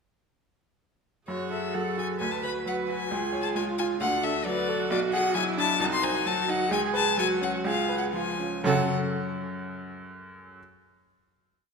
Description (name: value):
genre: quick classical-period movement for piano quartet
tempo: 116-135 BPM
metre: 4/4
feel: rubato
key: F# minor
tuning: A4 = 440 Hz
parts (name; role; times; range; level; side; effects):
- rich violin; melody; 1.3-8.9 s; C#5 to C6; -29 LUFS; left 5 dB; none
- warm cello; second line; 1.3-8.9 s; C#3 to B4; -31 LUFS; right 4 dB; none
- bright baby grand piano; accompaniment; 1.3-10.6 s; B1 to C#5; -31 LUFS; left 1 dB; none
- warm viola; accompaniment; 1.3-8.9 s; Eb4 to B4; -32 LUFS; right 3 dB; none
room: wet scoring stage reverb, RT60 1.9 s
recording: minimal, uncompressed stereo recording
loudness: -25 LUFS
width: side -5 dB against mid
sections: 1.3-8.7 A section; 8.7-10.6 final chord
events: none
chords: 1.3 F#m; 2.2 Bm/D; 3.1 C#; 4.0 D; 4.9 G#m7b5/B; 5.8 Cdim; 6.7 C#7sus4; 7.7 C#7; 8.7 F#m